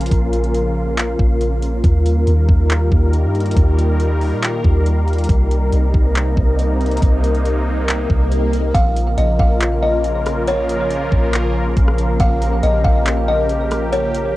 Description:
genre	hip hop, atmospheric cloud-rap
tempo	139 BPM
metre	4/4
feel	half-time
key	Bb dorian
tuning	A4 = 438 Hz
part	sweeping resonant pad	sustained chords	0.0-14.4 s	C3 to Bb4	-21 LUFS	equal	chorus, sidechain pumping, cassette tape
part	soft 808-style bass	bass	0.0-14.4 s	Bb1 to Bb2	-17 LUFS	equal	none
part	smooth R&B drum kit	drums	0.0-14.2 s	handclaps, hi-hat, kick drum, rim click	-17 LUFS	equal	cassette tape
part	wind-like tuned noise texture	texture	0.0-14.4 s	C4 to F5	-28 LUFS	equal	built-in reverb, cassette tape
part	swell	sound effects	7.5-8.7 s	none	-27 LUFS	right 1 dB	none
part	buzzing kalimba	melody	8.7-14.3 s	Db5 to F5	-20 LUFS	equal	low-pass filter, cassette tape, tape echo
room	little or no reverb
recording	home recording on cassette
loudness	-14 LUFS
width	side -17 dB against mid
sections	0.0-8.7 A section; 8.7-14.4 B section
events	swell 7.5-8.7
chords	0.0 Bbm; 1.8 Ebadd9; 5.3 Cm7; 8.7 Bbm

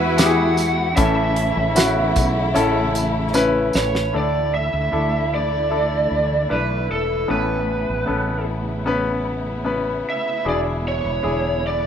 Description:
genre	pop ballad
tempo	76 BPM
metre	4/4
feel	straight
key	A major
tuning	A4 = 440 Hz
part	lead guitar through a small cranked amp	melody	0.0-11.9 s	A4 to F#5	-23 LUFS	right 3 dB	overdrive, plate reverb
part	dark studio cello section	second line	0.0-3.7 s	A3 to E4	-26 LUFS	equal	plate reverb
part	clear concert grand piano	accompaniment	0.0-11.9 s	A2 to B4	-23 LUFS	left 2 dB	plate reverb
part	dark studio string section	sustained chords	0.0-11.9 s	C#3 to F#4	-27 LUFS	left 1 dB	none
part	mellow fretless electric bass	bass	0.0-11.9 s	E1 to E2	-25 LUFS	equal	none
part	damped 70s drum kit	drums	0.2-4.1 s	hi-hat, kick drum, snare drum	-21 LUFS	right 1 dB	none
part	tambourine	percussion	0.2-3.9 s	none	-29 LUFS	right 3 dB	none
room	light reverb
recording	rough home demo mix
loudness	-18 LUFS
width	side -8 dB against mid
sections	0.0-4.1 A section; 4.1-11.9 B section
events	drum fill 3.4-4.1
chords	0.0 Eadd9; 1.0 A; 4.1 Dsus2; 7.3 Aadd9; 10.5 E7

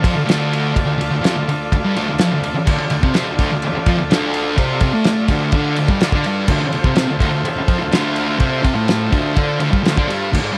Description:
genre	garage rock duo or trio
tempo	125 BPM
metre	4/4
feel	straight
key	D minor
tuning	A4 = 440 Hz
part	combo organ	sustained chords	0.0-10.6 s	F4 to D5	-28 LUFS	equal	none
part	thick fuzz guitar	riff	0.0-10.6 s	D2 to D4	-20 LUFS	equal	distortion
part	cloth-damped thuddy drum kit	drums	0.0-10.5 s	crash cymbal, kick drum, ride cymbal, snare drum	-21 LUFS	equal	none
room	light reverb, small room ambience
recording	none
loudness	-17 LUFS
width	mono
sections	0.0-10.3 A section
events	none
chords	0.0 Dm

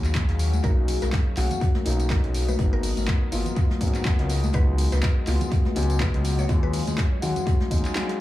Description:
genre	deep house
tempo	123 BPM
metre	4/4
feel	swing 57% on 16ths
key	Eb minor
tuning	A4 = 440 Hz
part	deep dark ambient pad	sustained chords	0.0-8.2 s	F#3 to F5	-35 LUFS	left 3 dB	chorus, built-in reverb, sidechain pumping
part	smooth synth bass	bass	0.0-7.8 s	Ab1 to Eb2	-24 LUFS	equal	sidechain pumping
part	punchy analog drum machine	drums	0.0-8.2 s	handclaps, hi-hat, snare drum, tambourine	-33 LUFS	equal	analog delay
part	electronic kick drum	drums	0.1-7.8 s	none	-23 LUFS	equal	overdrive
part	jazz brush drum kit	drums	0.1-8.2 s	hi-hat, snare drum	-42 LUFS	right 2 dB	high-pass filter on hats, high-pass filter on snare, high-pass filter on room, analog delay
part	congas	percussion	0.1-8.1 s	none	-35 LUFS	equal	none
part	mallet-like synth pluck	melody	0.6-6.8 s	A#4 to Db5	-39 LUFS	equal	chorus, analog delay
part	felt-muted upright piano	stabs	0.6-8.2 s	F#3 to F#4	-30 LUFS	left 2 dB	sidechain pumping, analog delay
room	light reverb, small room ambience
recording	echo-heavy mix, studio ambience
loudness	-21 LUFS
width	side -15 dB against mid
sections	0.0-8.2 A section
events	drum fill 8.0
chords	0.0 Ebm11; 0.6 Bmaj9; 2.6 Abm9; 4.3 Db9sus4; 6.5 Ebm11

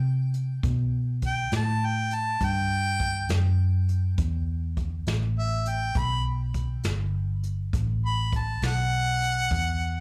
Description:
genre	slow blues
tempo	68 BPM (dotted quarters)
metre	12/8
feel	straight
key	unclear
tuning	A4 = 440 Hz
part	warm harmonica	melody	0.0-10.0 s	E5 to B5	-30 LUFS	equal	plate reverb, slapback echo
part	vintage muted fingered electric bass	bass	0.0-10.0 s	G1 to C3	-28 LUFS	equal	none
part	jazz brush drum kit	drums	0.3-9.6 s	hi-hat, kick drum, snare drum	-33 LUFS	equal	none
room	little or no reverb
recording	live gig heard through the venue's PA, club reverb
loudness	-26 LUFS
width	mono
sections	0.0-10.0 A section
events	harmonica solo 0.0-10.0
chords	0.0 Cmaj7; 6.0 B5

